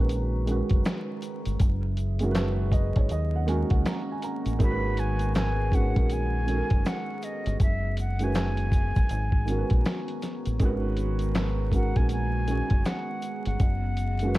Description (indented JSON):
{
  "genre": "lo-fi hip hop",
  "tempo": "80 BPM",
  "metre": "4/4",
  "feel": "swing 62% on 16ths",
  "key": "G# minor",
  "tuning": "A4 = 440 Hz",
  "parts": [
    { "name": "dark upright piano", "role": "accompaniment", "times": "0.0-14.4 s", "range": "D#3 to A#5", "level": "-31 LUFS", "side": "right 2 dB", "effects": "cassette tape, low-pass filter" },
    { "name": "warbly tape-like pad", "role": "sustained chords", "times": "0.0-14.4 s", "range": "D#3 to A#5", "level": "-37 LUFS", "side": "left 1 dB", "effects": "chorus, built-in reverb, low-pass filter" },
    { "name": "deep dub fingered electric bass", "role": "bass", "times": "0.0-14.4 s", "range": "F#1 to D#2", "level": "-27 LUFS", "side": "equal", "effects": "none" },
    { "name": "lo-fi sampler-style drum kit", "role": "drums", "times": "0.1-14.4 s", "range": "handclaps, hi-hat, kick drum, snare drum", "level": "-25 LUFS", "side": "equal", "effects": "none" },
    { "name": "tube shaker", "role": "percussion", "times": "0.1-14.4 s", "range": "none", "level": "-58 LUFS", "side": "left 6 dB", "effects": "none" },
    { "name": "breathy concert flute", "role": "melody", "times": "4.6-14.4 s", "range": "D#5 to B5", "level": "-34 LUFS", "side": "left 1 dB", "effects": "low-pass filter" }
  ],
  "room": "studio ambience",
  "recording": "dark, warm production, vinyl crackle",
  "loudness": "-24 LUFS",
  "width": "side -17 dB against mid",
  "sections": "0.0-10.6 A section; 10.6-14.4 B section",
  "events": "none",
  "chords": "0.0 G#m9; 1.6 F#9sus4; 3.1 D#m7; 4.6 G#m9; 7.6 F#9sus4; 9.1 G#m9; 13.6 F#9sus4",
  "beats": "0.10 0.85 | 1.60 2.35 3.10 3.85 | 4.60 5.35 6.10 6.85 | 7.60 8.35 9.10 9.85 | 10.60 11.35 12.10 12.85 | 13.60 14.35"
}